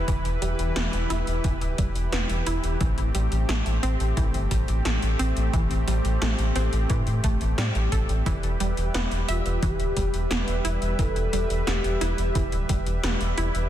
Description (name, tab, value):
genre	synthwave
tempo	88 BPM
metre	4/4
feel	straight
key	E minor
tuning	A4 = 440 Hz
part	soft supersaw	sustained chords	0.0-13.7 s	E3 to E5	-32 LUFS	right 1 dB	sidechain pumping
part	wide unison pluck	arpeggios	0.0-13.7 s	E3 to E5	-32 LUFS	right 2 dB	vintage 12-bit sampler grit, ping-pong delay
part	round analog bass	bass	0.0-13.7 s	D1 to A2	-25 LUFS	equal	tube saturation
part	80s electronic pad drums	drums	0.1-13.7 s	hi-hat, snare drum	-32 LUFS	left 1 dB	none
part	electronic kick drum	drums	0.1-12.8 s	none	-27 LUFS	equal	none
part	expressive synth lead	melody	9.3-13.0 s	F4 to B4	-32 LUFS	left 1 dB	analog chorus, digital delay
room	light reverb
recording	dense, heavily limited modern master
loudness	-22 LUFS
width	side -11 dB against mid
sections	0.0-13.7 A section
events	none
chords	0.0 Em; 2.8 Am7; 8.3 Em